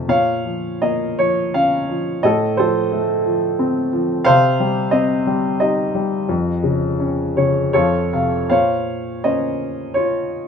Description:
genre	classical, lyrical solo piano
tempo	77-91 BPM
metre	3/4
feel	rubato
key	Bb minor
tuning	A4 = 438 Hz
part	warm grand piano	solo	0.0-10.5 s	F2 to F5	-16 LUFS	equal	none
room	moderate studio reverb, RT60 0.6 s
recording	minimal, uncompressed stereo recording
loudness	-16 LUFS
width	side -6 dB against mid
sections	0.0-8.5 A section; 8.5-10.5 B section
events	grand piano fill 7.0-8.5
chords	0.1 Bbm; 2.2 F/A; 4.3 Cm; 6.3 Eb9/F; 7.7 F; 8.5 Bbmadd9

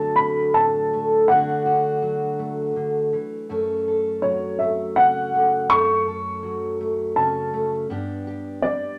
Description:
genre	folk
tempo	82 BPM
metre	3/4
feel	straight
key	unclear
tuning	A4 = 440 Hz
part	dark upright piano	melody	0.0-9.0 s	C#5 to C#6	-23 LUFS	equal	none
part	fingerpicked steel-string acoustic guitar	accompaniment	0.0-9.0 s	F#2 to A4	-25 LUFS	equal	none
room	wet studio ambience, RT60 0.5 s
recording	none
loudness	-22 LUFS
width	mono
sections	0.0-9.0 A section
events	none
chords	0.0 D; 3.5 F#m; 7.9 G

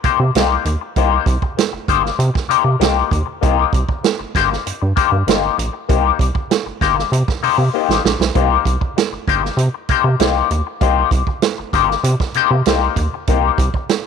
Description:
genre	funk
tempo	97 BPM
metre	4/4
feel	straight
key	C minor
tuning	A4 = 440 Hz
part	semi-hollow electric guitar	accompaniment	0.0-14.0 s	Bb3 to C5	-18 LUFS	left 17 dB	wah, spring reverb
part	rubbery square bass	bass	0.0-13.7 s	G1 to C3	-18 LUFS	right 1 dB	none
part	vintage drum kit	drums	0.0-14.0 s	hi-hat, kick drum, snare drum	-19 LUFS	right 6 dB	none
room	small room ambience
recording	1960s-style stereo with parts hard left and right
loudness	-14 LUFS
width	side -6 dB against mid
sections	0.0-14.1 A section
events	drum fill 7.7-8.4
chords	0.0 Cm7

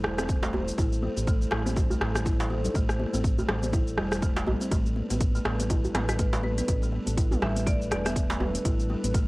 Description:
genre	afro house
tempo	122 BPM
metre	4/4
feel	swing 58% on 16ths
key	A minor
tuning	A4 = 440 Hz
part	dark analog pad	sustained chords	0.0-9.3 s	G3 to C5	-35 LUFS	equal	chorus, sidechain pumping, cassette tape
part	round analog bass	bass	0.0-9.3 s	E1 to A1	-30 LUFS	equal	sidechain pumping
part	house drum kit	drums	0.0-9.3 s	cabasa, hi-hat, rim click, toms	-32 LUFS	equal	small room ambience, cassette tape
part	djembe	percussion	0.0-8.8 s	none	-33 LUFS	right 1 dB	none
part	buzzing kalimba	arpeggios	0.2-9.3 s	G3 to E4	-34 LUFS	equal	sidechain pumping, cassette tape, tape echo
part	congas	percussion	0.2-9.3 s	none	-37 LUFS	left 2 dB	none
part	electronic kick drum	drums	0.3-9.3 s	none	-26 LUFS	equal	small room ambience, cassette tape
part	marimba with hard mallets	melody	6.1-8.7 s	B4 to E5	-37 LUFS	equal	cassette tape, tape echo
room	light reverb, small room ambience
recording	home recording on cassette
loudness	-24 LUFS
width	side -22 dB against mid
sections	0.0-9.3 A section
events	none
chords	0.0 Am7; 4.7 Gadd9

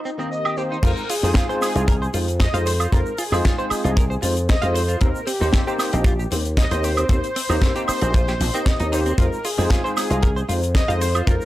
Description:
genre	nu-disco, nu disco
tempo	115 BPM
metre	4/4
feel	straight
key	F minor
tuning	A4 = 440 Hz
part	wide unison lead	melody	0.0-11.4 s	Eb4 to Eb5	-27 LUFS	equal	tape echo
part	direct-recorded clean electric guitar	riff	0.1-11.3 s	C3 to F5	-30 LUFS	right 2 dB	analog chorus
part	tight funk drum kit	drums	0.1-11.4 s	crash cymbal, hi-hat, shaker, snare drum, woodblock	-27 LUFS	equal	low-pass filter on cymbals, low-pass filter on hats, low-pass filter on snare, low-pass filter on perc, low-pass filter on room
part	barky tine electric piano	accompaniment	0.2-11.4 s	Eb3 to Eb5	-27 LUFS	equal	ensemble chorus, sidechain pumping
part	slap bass with an envelope filter	bass	0.8-11.4 s	Bb1 to F2	-22 LUFS	equal	none
part	kick drum	drums	0.8-11.4 s	none	-18 LUFS	equal	none
room	small room ambience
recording	dry, gritty hardware recording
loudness	-18 LUFS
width	side -15 dB against mid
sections	0.8-11.4 A section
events	drop 0.8-11.4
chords	0.0 Cm7/Eb; 0.8 Fm7; 5.0 Cm7; 9.2 Fm7

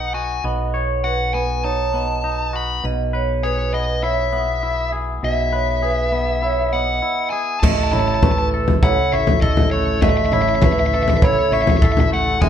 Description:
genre	post-rock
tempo	100 BPM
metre	4/4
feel	straight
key	unclear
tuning	A4 = 439 Hz
part	nasal lead guitar with a parked wah	melody	0.0-12.5 s	C#5 to B5	-22 LUFS	left 3 dB	overdrive
part	twangy electric guitar	arpeggios	0.0-12.5 s	B2 to C#5	-25 LUFS	left 3 dB	none
part	vibraphone with medium hard mallets	arpeggios	0.0-12.5 s	B4 to D#6	-24 LUFS	right 6 dB	none
part	growling fingered electric bass	bass	0.0-12.5 s	G#1 to B1	-24 LUFS	equal	overdrive
part	dark chamber string section	sustained chords	7.6-12.5 s	B2 to E4	-26 LUFS	equal	none
part	loose indie drum kit	drums	7.6-12.5 s	crash cymbal, kick drum, toms	-17 LUFS	equal	none
room	moderate large studio reverb, RT60 0.9 s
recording	band playing live in one room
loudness	-16 LUFS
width	side -9 dB against mid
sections	0.0-7.6 A section; 7.6-12.5 B section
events	none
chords	0.0 Badd9; 2.8 E/B; 7.6 A

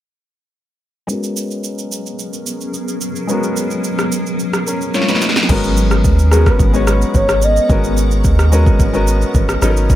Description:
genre	amapiano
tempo	109 BPM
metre	4/4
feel	straight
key	G# minor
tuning	A4 = 437 Hz
part	clear grand piano	accompaniment	1.1-10.0 s	F#3 to C#5	-20 LUFS	left 2 dB	low-pass filter
part	granular cloud pad	sustained chords	1.9-10.0 s	F#3 to C#6	-23 LUFS	equal	built-in reverb, sidechain pumping, low-pass filter
part	deep house drum kit	drums	1.1-10.0 s	crash cymbal, kick drum, rim click, shaker, snare drum	-17 LUFS	equal	none
part	punchy sub bass	bass	5.5-10.0 s	G#1 to D#2	-14 LUFS	equal	none
part	warm velvety synth lead	melody	6.3-8.0 s	G#4 to D#5	-19 LUFS	equal	chorus, digital delay
room	digital ambience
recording	none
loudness	-13 LUFS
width	side -13 dB against mid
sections	1.1-5.5 A section; 5.5-10.0 B section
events	filter sweep 1.1-5.5; drum fill 4.9-5.5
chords	1.1 G#m11

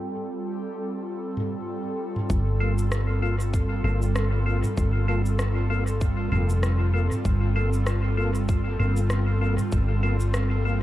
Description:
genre	ambient dub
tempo	97 BPM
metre	4/4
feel	swing 56% on 16ths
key	G minor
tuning	A4 = 440 Hz
part	airy breathy pad	sustained chords	0.0-10.8 s	G3 to A4	-30 LUFS	right 1 dB	chorus
part	bubbling stepped-filter texture	texture	0.0-2.3 s	G4 to G5	-42 LUFS	left 2 dB	chorus, built-in reverb
part	organic electronic drum kit	drums	1.4-10.5 s	cabasa, rim click, toms	-34 LUFS	equal	dub echo
part	hollow-body short-scale fingered electric bass	bass	2.3-10.8 s	F1 to G1	-23 LUFS	equal	none
part	electronic kick drum	drums	2.3-9.9 s	none	-26 LUFS	equal	none
part	percussive tonewheel organ	stabs	2.6-10.8 s	Bb3 to A4	-33 LUFS	left 2 dB	chorus vibrato, slow rotary speaker, dub echo
room	little or no reverb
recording	echo-heavy mix, low-pass filter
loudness	-22 LUFS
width	side -14 dB against mid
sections	0.0-2.3 A section; 2.3-10.8 B section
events	filter sweep on analog synth pad 0.0-2.3; filter sweep 0.0-2.3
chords	0.0 G9sus4; 2.3 Gm7

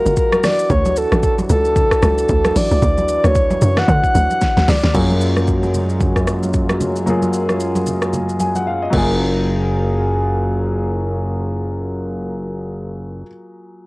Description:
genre	amapiano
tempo	113 BPM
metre	4/4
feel	swing 58% on 16ths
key	F# major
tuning	A4 = 440 Hz
part	breathy flute-like synth lead	melody	0.0-5.0 s	A4 to F#5	-17 LUFS	equal	chorus, tremolo
part	warm French horn section	sustained chords	0.0-13.2 s	E3 to G#4	-25 LUFS	equal	cassette tape
part	tight log drum bass	bass	0.1-4.9 s	F#1 to D3	-17 LUFS	equal	none
part	deep house drum kit	drums	0.1-9.1 s	crash cymbal, hi-hat, kick drum, rim click, shaker, snare drum	-20 LUFS	equal	cassette tape
part	congas	percussion	0.3-9.4 s	none	-25 LUFS	equal	none
part	warm baby grand piano	accompaniment	4.9-13.9 s	F#3 to G#5	-23 LUFS	left 1 dB	cassette tape
part	fat analog bass	bass	4.9-13.2 s	F#1 to F#2	-20 LUFS	equal	none
room	little or no reverb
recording	home recording on cassette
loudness	-14 LUFS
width	side -22 dB against mid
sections	0.0-4.9 A section; 4.9-9.2 B section; 9.2-13.4 C section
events	drop 0.0-4.9; drum fill 4.4-4.9; drums muted 8.7-9.2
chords	0.4 Dmaj9; 4.9 F#maj9

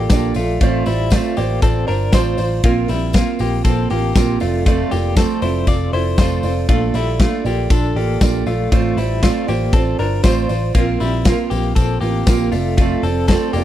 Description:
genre	jangly indie pop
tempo	118 BPM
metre	4/4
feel	straight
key	F major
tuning	A4 = 440 Hz
part	fingerpicked plugged-in steel-string acoustic guitar	accompaniment	0.0-13.6 s	F3 to D5	-20 LUFS	right 8 dB	none
part	direct-recorded clean electric guitar	arpeggios	0.0-13.6 s	G3 to D5	-22 LUFS	left 5 dB	tremolo, tape echo
part	vintage muted picked electric bass	bass	0.0-13.6 s	F1 to Bb1	-20 LUFS	left 1 dB	none
part	big rock drum kit	drums	0.1-13.6 s	hi-hat, kick drum, ride cymbal, snare drum	-16 LUFS	left 1 dB	none
part	tambourine	percussion	0.1-13.6 s	none	-38 LUFS	left 11 dB	none
room	little or no reverb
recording	dry, close 1970s-style studio recording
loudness	-14 LUFS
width	side -12 dB against mid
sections	0.0-13.6 A section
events	none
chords	0.0 Bbmaj7; 0.6 F6/A; 2.6 Bbsus2; 4.4 F6; 6.7 Bbmaj7; 8.7 F6/A; 10.7 Bbsus2; 12.5 F6

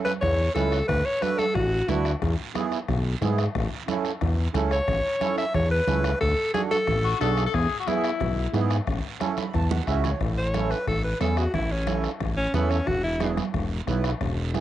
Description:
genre	latin, cumbia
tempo	180 BPM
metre	4/4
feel	straight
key	A major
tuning	A4 = 441 Hz
part	edgy alto saxophone	melody	0.0-2.1, 4.7-7.2, 10.4-13.4 s	B3 to E5	-26 LUFS	equal	cassette tape
part	accordion	accompaniment	0.0-14.6 s	B3 to B5	-31 LUFS	right 7 dB	light tremolo tuning, cassette tape
part	bombo	percussion	0.1-14.6 s	none	-32 LUFS	left 5 dB	none
part	congas	percussion	0.1-14.6 s	none	-33 LUFS	right 7 dB	none
part	guiro	percussion	0.1-14.6 s	none	-40 LUFS	right 9 dB	none
part	smooth synth bass	bass	0.2-14.6 s	E1 to G#2	-25 LUFS	equal	none
part	clear tenor saxophone	second line	7.0-8.5 s	E4 to A4	-27 LUFS	left 8 dB	cassette tape
room	light reverb, small room reverb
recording	home recording on cassette, nothing above 10.8 kHz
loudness	-22 LUFS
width	side -13 dB against mid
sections	0.0-10.2 A section; 10.2-14.6 B section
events	accordion fill 9.2-10.2; drum fill 9.7-10.2; alto saxophone solo 10.2-14.6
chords	0.0 A; 0.9 D; 2.2 E; 3.5 A; 6.2 D; 7.5 E; 8.9 A; 12.9 E

